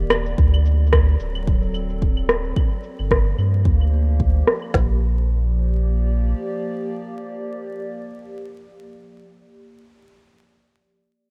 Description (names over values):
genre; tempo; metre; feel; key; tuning
folktronica; 110 BPM; 4/4; swing 56% on 16ths; Bb major; A4 = 440 Hz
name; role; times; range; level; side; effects
warbly tape-like pad; sustained chords; 0.0-9.7 s; Eb3 to D5; -34 LUFS; equal; chorus, built-in reverb, phaser
warm sub bass; bass; 0.0-6.3 s; D1 to G2; -21 LUFS; equal; none
electronic rim click, claves and shaker; drums; 0.1-4.7 s; none; -24 LUFS; equal; low-pass filter on perc, low-pass filter on snare
organic electronic drum kit; drums; 0.4-4.9 s; kick drum, snare drum; -22 LUFS; equal; none
room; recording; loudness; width
light reverb; rough home demo mix, vinyl crackle; -20 LUFS; mono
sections
0.0-4.7 A section; 4.7-9.1 B section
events
filter sweep on drum 0.0-4.7; filter sweep on sub bass 0.0-4.7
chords
0.4 D7; 2.6 Gm7; 4.7 Bb6